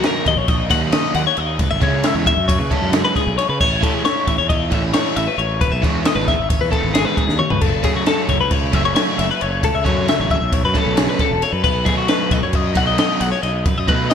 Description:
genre	math rock and midwest emo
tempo	269 BPM (eighths)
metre	9/8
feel	straight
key	unclear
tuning	A4 = 441 Hz
part	twelve-string electric guitar	arpeggios	0.0-14.1 s	F#4 to F#5	-19 LUFS	left 5 dB	phaser
part	overdriven semi-hollow guitar	riff	0.0-14.1 s	B2 to E4	-23 LUFS	right 3 dB	slapback echo
part	compact cocktail drum kit	drums	0.0-14.1 s	crash cymbal, kick drum, ride cymbal, snare drum, toms	-20 LUFS	equal	none
part	fuzz fingered electric bass	bass	0.3-14.1 s	E1 to C#3	-23 LUFS	equal	overdrive
room	moderate lush hall reverb, RT60 1.5 s, small room ambience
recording	big arena sound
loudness	-15 LUFS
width	side -8 dB against mid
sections	0.0-14.1 A section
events	drum fill 7.3-7.6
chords	0.0 D#m; 1.6 C#m7; 3.6 A; 5.6 E; 7.6 F#m7; 11.6 N.C.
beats	0.03 0.25 0.47 0.70 0.92 1.14 1.37 | 1.59 1.81 2.04 2.26 2.48 2.71 2.93 3.15 3.38 | 3.60 3.82 4.04 4.27 4.49 4.71 4.94 5.16 5.38 | 5.61 5.83 6.05 6.28 6.50 6.72 6.94 7.17 7.39 | 7.61 7.84 8.06 8.28 8.51 8.73 8.96 9.18 9.40 | 9.63 9.85 10.07 10.30 10.52 10.74 10.97 11.19 11.42 | 11.64 11.86 12.09 12.31 12.54 12.76 12.98 13.21 13.43 | 13.66 13.88 14.11

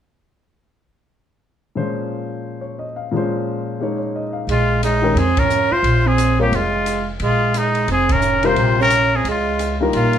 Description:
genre	modal jazz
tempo	177 BPM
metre	4/4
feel	swing 62% on 8ths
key	Bb dorian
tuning	A4 = 440 Hz
part	warm baby grand piano	accompaniment	1.8-10.2 s	Bb2 to F5	-21 LUFS	left 3 dB	none
part	trumpet with straight mute	melody	4.5-10.2 s	Eb4 to C5	-19 LUFS	left 2 dB	none
part	breathy tenor saxophone	second line	4.5-10.2 s	Ab3 to F4	-21 LUFS	right 6 dB	none
part	upright bass	bass	4.5-10.2 s	F1 to F2	-20 LUFS	left 1 dB	none
part	open jazz drum kit	drums	4.5-10.2 s	hi-hat, kick drum, ride cymbal	-27 LUFS	equal	none
room	moderate large studio reverb, RT60 0.8 s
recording	band playing live in one room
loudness	-16 LUFS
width	side -9 dB against mid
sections	1.8-4.5 A section; 4.5-10.2 B section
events	band accent 5.3, 8.1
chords	1.8 Bbm9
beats	| 1.76 2.10 2.44 2.79 | 3.12 3.46 3.81 4.14 | 4.49 4.83 5.17 5.50 | 5.84 6.18 6.52 6.86 | 7.20 7.54 7.88 8.22 | 8.56 8.90 9.24 9.58 | 9.92

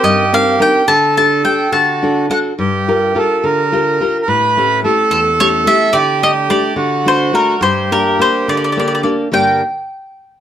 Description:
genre	italian folk, Italian serenade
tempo	71 BPM (dotted quarters)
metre	6/8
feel	straight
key	G minor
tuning	A4 = 436 Hz
part	mandolin	melody	0.0-2.4, 5.1-9.6 s	A4 to A5	-14 LUFS	left 1 dB	plate reverb
part	accordion	second line	0.0-9.6 s	F#4 to B4	-16 LUFS	right 3 dB	none
part	nylon-string guitar	accompaniment	0.0-9.6 s	E2 to D5	-16 LUFS	left 2 dB	none
room	moderate studio reverb, RT60 0.5 s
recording	none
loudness	-11 LUFS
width	side -10 dB against mid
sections	0.0-9.3 A section; 9.3-10.4 B section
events	none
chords	0.0 Cm7; 0.9 Dsus4; 1.7 D; 2.6 Gm7; 4.3 A7; 5.9 Dsus4; 6.8 D; 7.6 Gm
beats	0.05 | 0.88 1.73 | 2.58 3.43 | 4.28 5.11 | 5.94 6.79 | 7.63 8.48 | 9.34

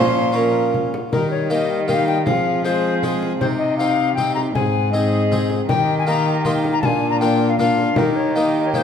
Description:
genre	classical, renaissance-style consort dance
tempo	158 BPM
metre	3/4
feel	straight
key	unclear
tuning	A4 = 440 Hz
part	tenor recorder	melody	0.0-8.8 s	Db4 to C6	-22 LUFS	left 6 dB	none
part	warm violin	second line	0.0-8.8 s	Eb4 to C5	-26 LUFS	right 4 dB	none
part	harpsichord	accompaniment	0.0-8.8 s	Ab2 to Ab4	-23 LUFS	left 2 dB	none
part	warm trombone	accompaniment	0.0-8.8 s	F3 to Eb4	-24 LUFS	left 1 dB	none
part	rich cello	bass	0.0-8.8 s	Ab2 to F3	-23 LUFS	equal	none
part	frame drum	percussion	0.7-8.8 s	none	-26 LUFS	left 1 dB	none
room	moderate recital hall reverb, RT60 1.4 s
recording	minimal, uncompressed stereo recording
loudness	-16 LUFS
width	side -8 dB against mid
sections	0.0-1.1 A section; 1.1-8.8 B section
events	none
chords	0.0 Bbm; 1.1 Eb; 2.3 Fm; 3.4 Cm; 4.5 Ab; 5.7 Eb; 6.8 Bb; 8.0 Eb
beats	0.35 0.74 | 1.13 1.51 1.89 | 2.27 2.65 3.03 | 3.41 3.79 4.17 | 4.55 4.93 5.31 | 5.69 6.07 6.45 | 6.83 7.21 7.59 | 7.97 8.35 8.74

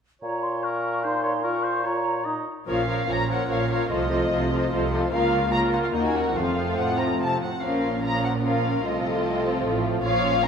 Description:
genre	quick classical-period movement for symphony orchestra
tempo	147 BPM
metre	3/4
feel	straight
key	Bb minor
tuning	A4 = 440 Hz
part	hollow large flute ensemble	second line	0.2-2.3 s	Bb5 to Db6	-29 LUFS	left 2 dB	none
part	mellow clarinet	second line	0.2-2.5 s	Eb4 to F4	-32 LUFS	left 1 dB	none
part	warm oboe	second line	0.2-2.5 s	Bb4 to Eb5	-30 LUFS	right 3 dB	none
part	mellow bassoon	accompaniment	0.2-2.4 s	Bb2	-29 LUFS	right 1 dB	none
part	muted studio violin section	melody	2.7-10.5 s	Eb5 to Bb5	-28 LUFS	left 3 dB	none
part	muted studio violin section	second line	2.7-10.5 s	F4 to Db5	-28 LUFS	left 1 dB	none
part	muted studio viola section	accompaniment	2.7-10.5 s	F3 to F4	-28 LUFS	equal	none
part	warm French horn section	sustained chords	2.7-10.5 s	A3 to F4	-29 LUFS	right 1 dB	none
part	muted studio cello section	bass	2.7-10.5 s	Eb2 to Db3	-32 LUFS	right 2 dB	none
part	muted studio double bass section	bass	2.7-10.5 s	F1 to Eb2	-30 LUFS	right 3 dB	none
room	moderate scoring stage reverb, RT60 1.4 s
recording	minimal, uncompressed stereo recording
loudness	-22 LUFS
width	side -6 dB against mid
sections	0.2-2.7 A section; 2.7-10.5 B section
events	none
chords	0.2 Bbm; 3.9 F7/C; 5.1 Bbm/Db; 5.9 Ebm; 6.4 F; 7.6 Bbm; 8.8 F7/C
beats	| 0.22 0.63 1.04 | 1.44 1.85 2.26 | 2.69 3.10 3.50 | 3.91 4.32 4.72 | 5.13 5.54 5.94 | 6.36 6.78 7.19 | 7.61 8.02 8.43 | 8.84 9.24 9.65 | 10.05 10.46

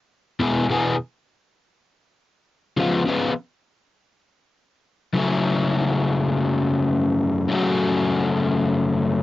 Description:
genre	rock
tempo	free time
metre	none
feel	none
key	F# minor from 5.1 s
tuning	A4 = 441 Hz
part	crunchy overdriven guitar	solo	0.4-9.2 s	E2 to G#4	-19 LUFS	left 2 dB	cassette tape
room	moderate booth ambience, RT60 0.2 s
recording	home recording on cassette, nothing above 7.5 kHz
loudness	-19 LUFS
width	side -15 dB against mid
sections	0.0-5.1 A section; 5.1-9.2 B section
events	none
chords	0.4 E; 2.8 C#7; 5.1 F#m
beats	free time

